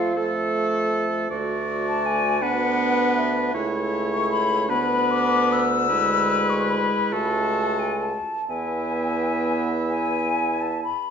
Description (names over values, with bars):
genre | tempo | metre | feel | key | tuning
classical, slow romantic movement for wind quintet | 42-55 BPM (dotted quarters) | 6/8 | rubato | A major | A4 = 436 Hz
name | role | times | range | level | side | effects
mellow hollow silver concert flute | melody | 0.0-11.1 s | E5 to E6 | -24 LUFS | left 5 dB | none
clear oboe | second line | 0.0-10.9 s | A4 to E5 | -28 LUFS | left 3 dB | none
bright clarinet | accompaniment | 0.0-10.9 s | D4 to A4 | -29 LUFS | right 8 dB | none
clear French horn | accompaniment | 0.0-10.9 s | G#3 to B3 | -27 LUFS | equal | none
mellow bassoon | bass | 0.0-10.9 s | C#2 to F2 | -28 LUFS | right 2 dB | none
room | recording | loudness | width
wet recital hall reverb, RT60 1.4 s | nothing above 7.8 kHz | -20 LUFS | side -7 dB against mid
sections
0.0-11.1 A section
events
none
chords
0.0 Dm/F (rootless); 1.3 D; 2.4 D69; 3.5 A/C#; 4.7 Bmadd11/D; 5.9 E7/D; 7.1 A/C#; 8.5 E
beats
0.17 | 1.30 2.42 | 3.54 4.69 | 5.90 7.13 | 8.50 9.91